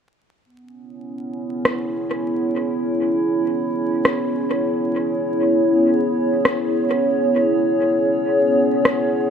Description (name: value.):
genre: ambient dub.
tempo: free time.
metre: none.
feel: none.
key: C# minor.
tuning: A4 = 444 Hz.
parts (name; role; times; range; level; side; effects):
warbly tape-like pad; sustained chords; 1.1-9.3 s; B3 to C#5; -18 LUFS; equal; chorus, built-in reverb.
electronic rim click; drums; 1.7-9.0 s; none; -21 LUFS; left 1 dB; small room reverb, dub echo.
room: wet spring reverb, RT60 1.9 s.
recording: dark, warm production, vinyl crackle.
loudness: -17 LUFS.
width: side -7 dB against mid.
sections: 0.5-9.3 A section.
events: none.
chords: 0.5 C#m7.